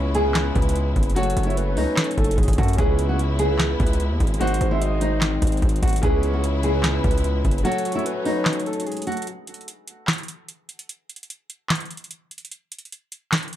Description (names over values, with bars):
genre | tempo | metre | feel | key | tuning
hip hop, trap | 148 BPM | 4/4 | half-time | C# minor | A4 = 440 Hz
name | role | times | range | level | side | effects
soft octave-layered synth lead | second line | 0.0-9.3 s | G#4 to D#5 | -32 LUFS | right 2 dB | chorus, tape echo
warm grand piano | accompaniment | 0.0-9.3 s | C#3 to C#5 | -28 LUFS | left 3 dB | none
warm symphonic string section | sustained chords | 0.0-9.3 s | C#3 to E4 | -32 LUFS | equal | none
distorted 808-style bass | bass | 0.0-7.6 s | F#1 to F#2 | -23 LUFS | equal | distortion
nylon-string guitar | melody | 0.1-9.3 s | D#4 to G#4 | -26 LUFS | equal | none
booming analog drum machine | drums | 0.1-13.6 s | handclaps, hi-hat, kick drum, snare drum | -23 LUFS | equal | none
room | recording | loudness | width
little or no reverb | dark, warm production | -19 LUFS | side -12 dB against mid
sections
0.0-9.3 A section; 9.3-13.6 B section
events
break 7.6-9.3, 9.3-13.6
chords
0.0 C#m7; 1.2 F#m; 2.8 C#m7; 4.4 G#7; 6.0 C#m7; 7.6 F#m; 9.3 N.C.